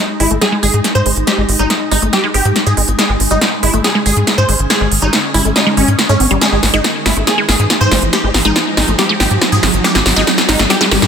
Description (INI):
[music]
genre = psychedelic trance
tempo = 140 BPM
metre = 4/4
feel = straight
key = unclear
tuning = A4 = 439 Hz
[part]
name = supersaw stab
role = melody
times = 0.0-11.1 s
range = Db4 to C5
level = -18 LUFS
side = right 1 dB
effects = phaser, dub echo
[part]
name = swarming drone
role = sustained chords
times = 0.0-11.1 s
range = Ab3 to Ab4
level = -22 LUFS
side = left 2 dB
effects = built-in reverb
[part]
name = riser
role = sound effects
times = 1.8-11.1 s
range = none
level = -22 LUFS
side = right 2 dB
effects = none
[part]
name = wide unison pluck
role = riff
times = 0.2-10.9 s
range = G3 to C4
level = -19 LUFS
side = equal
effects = auto-pan, ping-pong delay
[part]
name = tight sequencer bass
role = bass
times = 0.2-11.1 s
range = Ab1 to Ab2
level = -15 LUFS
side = equal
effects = tube saturation
[part]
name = big-room dance drum kit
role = drums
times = 0.2-11.1 s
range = hi-hat, snare drum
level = -14 LUFS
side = equal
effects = none
[sound]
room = light reverb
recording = none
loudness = -10 LUFS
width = side -7 dB against mid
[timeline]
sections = 0.0-11.1 A section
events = build-up 0.0-11.1; drum fill 0.0-11.1; filter sweep on synth arpeggio sound 0.0-11.1; riser 1.8-11.1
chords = 0.0 Ab5